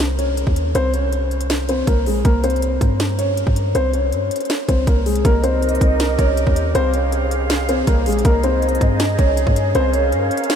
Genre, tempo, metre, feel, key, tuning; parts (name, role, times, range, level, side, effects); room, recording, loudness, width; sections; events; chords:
hip hop, trap; 160 BPM; 4/4; half-time; C phrygian; A4 = 440 Hz
warm 808-style bass; bass; 0.0-10.3 s; Bb1 to G2; -20 LUFS; equal
trap drum kit; drums; 0.0-10.6 s; hi-hat, kick drum, snare drum; -21 LUFS; equal
dark concert grand piano; melody; 0.2-10.5 s; Ab3 to Db5; -20 LUFS; left 1 dB; low-pass filter, analog delay
large flute ensemble; sustained chords; 5.2-10.6 s; Db4 to F5; -23 LUFS; right 2 dB
moderate huge ambient reverb, RT60 7.8 s; dreamy mix soaked in reverb; -15 LUFS; side -8 dB against mid
0.0-5.2 A section; 5.2-10.6 B section
0.0 Cm; 0.7 Bbmadd9 (rootless); 2.2 Bbm69/C (rootless); 5.2 Cm7; 6.7 Fmadd9/C; 8.2 Ab/C; 9.7 Bbm7/C